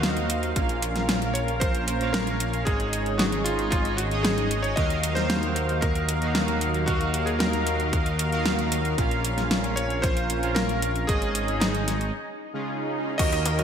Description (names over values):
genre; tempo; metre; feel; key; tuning
synthwave; 114 BPM; 4/4; straight; Eb dorian; A4 = 439 Hz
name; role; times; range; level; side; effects
bright electric grand piano; melody; 0.0-13.6 s; Eb4 to Eb5; -30 LUFS; left 1 dB; ping-pong delay
chorused pulse-width pad; sustained chords; 0.0-13.6 s; Gb3 to Eb6; -31 LUFS; left 1 dB; vintage 12-bit sampler grit, sidechain pumping
analog synth brass; stabs; 0.0-13.6 s; Db3 to F5; -30 LUFS; right 3 dB; chorus
dark detuned saw bass; bass; 0.0-13.6 s; Ab1 to Eb2; -28 LUFS; equal; tube saturation
pop drum kit; drums; 0.0-13.6 s; crash cymbal, hi-hat, snare drum; -28 LUFS; equal; overdrive, gated reverb
electronic kick drum; drums; 0.6-13.3 s; none; -26 LUFS; equal; overdrive
swell; sound effects; 12.4-13.2 s; none; -34 LUFS; right 2 dB; none
analog pluck; arpeggios; 13.2-13.6 s; Gb3 to Gb4; -31 LUFS; left 2 dB; chorus
room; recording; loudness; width
moderate lush hall reverb, RT60 1.7 s; bright 1980s-style digital production; -22 LUFS; side -8 dB against mid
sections
0.0-13.2 A section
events
break 12.1-13.2; swell 12.4-13.2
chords
0.0 Ebmadd9; 0.6 Bbm; 2.7 Absus4; 4.8 Ebmadd9; 9.0 Bbm; 11.1 Absus4; 12.1 Db